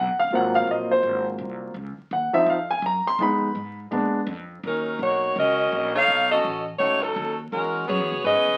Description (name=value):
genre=jazz, big band swing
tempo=167 BPM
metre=4/4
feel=swing 63% on 8ths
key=Eb minor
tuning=A4 = 440 Hz
part: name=warm concert grand piano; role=accompaniment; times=0.0-4.2 s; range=F3 to C6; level=-24 LUFS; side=equal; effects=none
part: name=upright bass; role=bass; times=0.0-8.6 s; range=Gb1 to Bb2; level=-36 LUFS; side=equal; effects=none
part: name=mellow saxophone section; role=melody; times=4.6-8.6 s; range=F#3 to F5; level=-23 LUFS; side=equal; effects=none
room=moderate studio reverb, RT60 0.6 s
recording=very old 78 rpm record, vinyl crackle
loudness=-23 LUFS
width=mono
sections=0.0-4.6 A section; 4.6-8.6 B section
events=grand piano solo 0.0-4.6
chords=0.3 Ab13; 1.8 Dbmaj9; 3.2 Fm7b5; 3.9 Bb7b9; 4.6 Ebm7; 6.1 B9; 7.5 E69